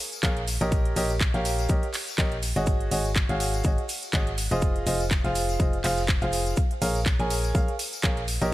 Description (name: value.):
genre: piano house.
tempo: 123 BPM.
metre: 4/4.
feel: swing 55% on 16ths.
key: Bb minor.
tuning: A4 = 440 Hz.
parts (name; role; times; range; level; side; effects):
house drum kit; drums; 0.1-8.5 s; handclaps, hi-hat, ride cymbal, tambourine; -30 LUFS; right 1 dB; none.
clear upright piano; riff; 0.2-8.5 s; F4 to Ab5; -29 LUFS; right 1 dB; sidechain pumping, digital delay.
solid FM bass; bass; 0.2-8.5 s; F1 to Bb1; -28 LUFS; equal; tube saturation, sidechain pumping.
cloth-damped thuddy drum kit; drums; 0.2-8.4 s; hi-hat, shaker, snare drum; -42 LUFS; left 1 dB; none.
electronic kick drum; drums; 0.2-8.1 s; none; -25 LUFS; equal; none.
room: studio reverb.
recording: none.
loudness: -23 LUFS.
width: side -16 dB against mid.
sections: 0.0-8.5 A section.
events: none.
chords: 0.5 Eb7/Bb; 2.7 Ab7sus4; 4.6 Fm7; 6.6 Bbm7.